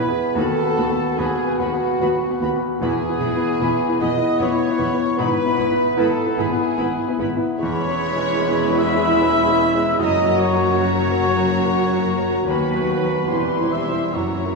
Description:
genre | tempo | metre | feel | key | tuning
classical, romantic movement for piano and orchestra | 74 BPM | 3/4 | rubato | E major | A4 = 440 Hz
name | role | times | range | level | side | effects
rich symphonic violin section | melody | 0.0-14.6 s | A#5 to C6 | -34 LUFS | left 4 dB | none
warm grand piano | melody | 0.0-14.6 s | D#2 to C5 | -24 LUFS | left 2 dB | none
clear clarinet | second line | 0.0-14.6 s | E4 to F#4 | -29 LUFS | right 2 dB | none
concert flute | second line | 0.0-14.6 s | F#5 to E6 | -29 LUFS | left 2 dB | none
mellow oboe | second line | 0.0-14.6 s | A#5 to C6 | -32 LUFS | left 2 dB | none
rich symphonic violin section | second line | 0.0-14.6 s | F#4 to E5 | -30 LUFS | left 3 dB | none
mellow bassoon | accompaniment | 0.0-14.6 s | F#3 to B3 | -30 LUFS | right 2 dB | none
warm symphonic viola section | accompaniment | 0.0-14.6 s | E3 to G4 | -28 LUFS | equal | none
dark French horn section | sustained chords | 0.0-14.6 s | A#3 to F#4 | -26 LUFS | equal | none
warm trumpet section | stabs | 0.0-14.6 s | F#4 to E5 | -24 LUFS | right 1 dB | none
rich symphonic cello section | bass | 0.0-14.6 s | D#2 to G#2 | -30 LUFS | right 1 dB | none
warm symphonic double bass section | bass | 0.4-14.6 s | E1 to D#2 | -31 LUFS | right 2 dB | none
room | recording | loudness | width
wet concert hall reverb, RT60 2.0 s | recorded in a church or concert hall, small room reverb | -17 LUFS | side -2 dB against mid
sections
0.0-14.6 A section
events
none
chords
0.4 B7/D#; 2.8 E; 5.2 E/G#; 7.6 C#m7/E; 10.0 F#; 12.5 B/D#; 13.3 C/E

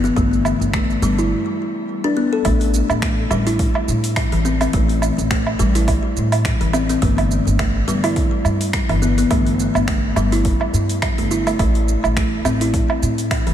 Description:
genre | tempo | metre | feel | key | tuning
organic downtempo | 105 BPM | 4/4 | swing 56% on 16ths | A minor | A4 = 440 Hz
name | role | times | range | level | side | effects
kalimba | arpeggios | 0.0-13.5 s | E3 to A4 | -20 LUFS | left 2 dB | ping-pong delay, shimmer reverb
upright bass | bass | 0.0-13.5 s | G1 to A2 | -20 LUFS | equal | tube saturation
deep house drum kit | drums | 0.0-13.5 s | finger snaps, hi-hat, shaker, woodblock | -24 LUFS | right 4 dB | overdrive, studio reverb
electronic kick drum | drums | 0.2-13.4 s | none | -22 LUFS | equal | overdrive, studio reverb
room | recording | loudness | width
moderate cathedral reverb, RT60 5.0 s | dreamy mix soaked in reverb | -16 LUFS | side -10 dB against mid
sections
0.0-2.5 A section; 2.5-13.5 B section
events
break 1.3-2.5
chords
0.0 N.C.; 2.5 A5; 7.0 Em/G; 11.6 A5

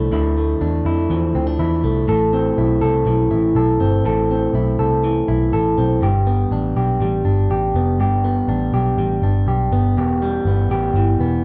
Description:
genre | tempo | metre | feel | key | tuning
jangly indie pop | 122 BPM | 4/4 | straight | A minor | A4 = 440 Hz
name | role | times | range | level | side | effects
electric guitar through a small old amp | arpeggios | 0.0-11.4 s | E2 to A4 | -21 LUFS | equal | none
vintage muted picked electric bass | bass | 0.0-11.4 s | E1 to F2 | -21 LUFS | equal | none
room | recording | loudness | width
wet large studio reverb, RT60 0.9 s | band playing live in one room | -18 LUFS | mono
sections
0.0-11.4 A section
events
none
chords
0.0 Dmadd9; 2.1 Am; 6.0 G; 10.0 Em

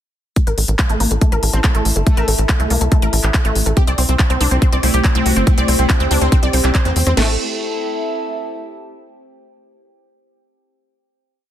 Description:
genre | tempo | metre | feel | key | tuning
psychedelic trance | 141 BPM | 4/4 | straight | A minor | A4 = 441 Hz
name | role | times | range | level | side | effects
wide unison pluck | riff | 0.4-7.4 s | A3 to D5 | -23 LUFS | left 1 dB | auto-pan, sidechain pumping, tape echo
garage drum kit | drums | 0.4-7.3 s | crash cymbal, kick drum, snare drum | -15 LUFS | equal | none
techno drum kit | drums | 0.4-7.2 s | handclaps, hi-hat | -21 LUFS | left 1 dB | none
warbly tape-like pad | texture | 1.0-8.8 s | C4 to A5 | -26 LUFS | left 1 dB | chorus, built-in reverb, sidechain pumping
tight sequencer bass | bass | 0.5-7.4 s | G1 to E2 | -17 LUFS | equal | tube saturation
metallic wobble bass | second line | 1.5-2.4 s | A3 to C4 | -31 LUFS | left 2 dB | chorus, sidechain pumping, high-pass filter, dub echo
supersaw stab | melody | 3.8-7.3 s | A3 to G4 | -22 LUFS | right 2 dB | phaser, sidechain pumping, digital delay
pulsing gated texture | sustained chords | 4.6-7.2 s | A3 to E4 | -25 LUFS | equal | chorus, built-in reverb, sidechain pumping
room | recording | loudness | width
light reverb, digital ambience | dense, heavily limited modern master | -13 LUFS | side -11 dB against mid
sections
0.4-7.2 groove; 7.2-8.9 final chord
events
filter sweep on synth arpeggio sound 0.4-7.2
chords
0.4 A5; 3.8 C5; 7.2 A5

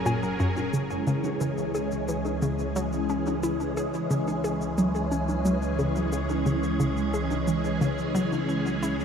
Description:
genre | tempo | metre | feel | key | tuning
ambient, sequencer-driven space music | 89 BPM | 4/4 | straight | unclear | A4 = 441 Hz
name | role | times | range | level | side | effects
phased string machine | sustained chords | 0.0-9.0 s | E3 to A#4 | -27 LUFS | equal | ensemble chorus, phaser
analog drone | bass | 0.0-9.0 s | F#1 to C#2 | -34 LUFS | equal | chorus
clean electric guitar | arpeggios | 0.1-0.5 s | F#4 to G#5 | -38 LUFS | left 2 dB | auto-pan, tape echo
hollow square pluck | riff | 0.1-9.0 s | F#2 to G#4 | -28 LUFS | equal | chorus, tape echo
shaker and congas | percussion | 0.1-9.0 s | none | -42 LUFS | left 1 dB | overdrive, tape echo
room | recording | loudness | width
wet huge ambient reverb, RT60 8.2 s | dreamy mix soaked in reverb, cassette tape | -24 LUFS | side -7 dB against mid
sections
0.7-9.0 A section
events
none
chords
0.0 F#add9; 0.7 C#m

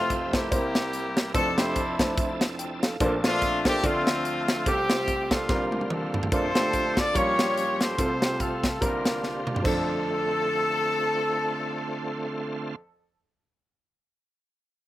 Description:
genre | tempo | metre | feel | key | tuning
uptempo gospel | 144 BPM | 4/4 | swing 57% on 8ths | F major | A4 = 440 Hz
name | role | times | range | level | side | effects
clear horn section | melody | 0.0-12.8 s | A3 to D5 | -27 LUFS | left 1 dB | slapback echo
warm grand piano | accompaniment | 0.0-12.8 s | F1 to G5 | -30 LUFS | right 1 dB | none
bright tonewheel organ | sustained chords | 0.0-12.8 s | C3 to E5 | -34 LUFS | right 2 dB | slow rotary speaker, overdrive, chorus vibrato
crisp fusion drum kit | drums | 0.1-9.8 s | crash cymbal, hi-hat, kick drum, snare drum, toms | -27 LUFS | equal | none
room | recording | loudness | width
little or no reverb | recorded outdoors, with no room sound | -23 LUFS | side -15 dB against mid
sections
0.0-6.3 A section; 6.3-9.6 B section; 9.6-13.0 C section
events
drum fill 5.5-6.3, 9.2-9.6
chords
0.0 Fmaj9; 0.5 C7; 1.3 Dm9/F; 3.0 Bbmaj9; 3.8 Dm7; 4.7 F/C; 5.5 C9sus4; 6.3 Bbmaj9; 7.2 Bbm6; 8.0 F/C; 8.8 C9sus4; 9.6 F6

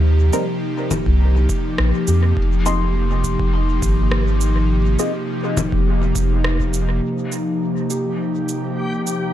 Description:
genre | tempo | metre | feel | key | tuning
ambient dub | 103 BPM | 4/4 | straight | F minor | A4 = 438 Hz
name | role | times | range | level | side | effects
airy breathy pad | sustained chords | 0.0-9.3 s | C3 to G4 | -21 LUFS | equal | chorus
felt-muted upright piano | arpeggios | 0.0-9.3 s | G4 to C6 | -30 LUFS | left 6 dB | vintage 12-bit sampler grit, low-pass filter, tape echo
soft dub sub bass | bass | 0.0-7.0 s | F1 to F2 | -17 LUFS | equal | none
filtered dub chord stab | stabs | 0.3-5.1 s | G3 to Eb5 | -27 LUFS | left 1 dB | phaser, dub echo
electronic shaker, congas and rim click | drums | 0.3-9.2 s | none | -27 LUFS | left 1 dB | dub echo
electronic kick drum | drums | 0.9-6.7 s | none | -24 LUFS | equal | overdrive
backwards swelling texture | texture | 8.1-9.3 s | G4 | -29 LUFS | left 1 dB | built-in reverb
room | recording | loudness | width
digital ambience | echo-heavy mix | -16 LUFS | side -12 dB against mid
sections
0.0-7.0 A section; 7.0-9.3 B section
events
filter sweep on felt piano 7.0-9.3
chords
0.0 Cm7; 2.4 Fm7; 7.0 Cm7

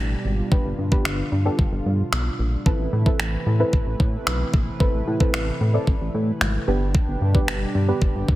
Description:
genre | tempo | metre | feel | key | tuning
dance-pop | 112 BPM | 4/4 | straight | A minor | A4 = 439 Hz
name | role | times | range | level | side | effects
chorused pulse-width pad | sustained chords | 0.0-8.4 s | B2 to B4 | -30 LUFS | right 1 dB | sidechain pumping
chorused synth bass | bass | 0.0-8.4 s | G1 to A2 | -23 LUFS | equal | sidechain pumping
deep mellow chord stab | accompaniment | 0.5-8.4 s | B3 to D5 | -27 LUFS | right 1 dB | chorus, sidechain pumping
pop drum kit | drums | 0.5-8.4 s | finger snaps, kick drum | -22 LUFS | equal | overdrive, soft clipping on snare
room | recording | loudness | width
little or no reverb | dense, heavily limited modern master | -19 LUFS | side -16 dB against mid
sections
0.0-8.4 A section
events
none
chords
0.0 G; 2.7 Amadd9; 6.7 G

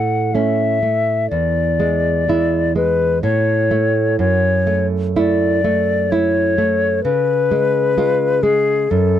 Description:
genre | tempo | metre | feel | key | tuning
romantic duo for flute and classical guitar | 63 BPM | 3/4 | rubato | unclear | A4 = 440 Hz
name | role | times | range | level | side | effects
hollow concert flute | melody | 0.0-9.2 s | G#4 to F#5 | -17 LUFS | left 5 dB | none
nylon-string guitar | accompaniment | 0.0-9.2 s | E2 to E#4 | -17 LUFS | right 4 dB | none
room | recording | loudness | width
light reverb | dry, close 1970s-style studio recording | -14 LUFS | side -10 dB against mid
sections
0.0-9.2 A section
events
none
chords
0.0 A; 1.3 E7; 3.2 N.C.; 4.2 F#m7; 7.0 C#7

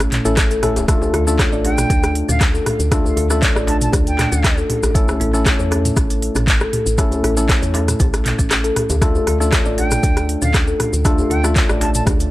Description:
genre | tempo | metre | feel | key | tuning
afro house | 118 BPM | 4/4 | straight | D harmonic minor | A4 = 440 Hz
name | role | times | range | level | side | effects
tine electric piano | stabs | 0.0-12.3 s | A3 to A4 | -22 LUFS | left 1 dB | sidechain pumping, tape echo
woody FM bass | bass | 0.0-12.3 s | D1 to E2 | -20 LUFS | equal | sidechain pumping
afro-pop drum kit | drums | 0.0-12.3 s | handclaps, hi-hat, rim click, toms | -21 LUFS | equal | none
cabasa | percussion | 0.0-12.3 s | none | -29 LUFS | left 3 dB | none
kalimba | arpeggios | 0.3-12.2 s | C#4 to D5 | -24 LUFS | left 1 dB | sidechain pumping, tape echo
electronic kick drum | drums | 0.4-12.2 s | none | -18 LUFS | equal | none
djembe | percussion | 0.6-12.2 s | none | -27 LUFS | left 1 dB | none
silver concert flute | melody | 1.6-4.6, 9.8-12.0 s | F5 to A5 | -25 LUFS | right 2 dB | tape echo
room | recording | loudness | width
small room ambience | dry, gritty hardware recording | -14 LUFS | side -16 dB against mid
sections
0.0-12.3 A section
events
kick drops out 8.5-9.0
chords
0.0 A; 0.9 Dm; 4.9 A; 9.0 Dm

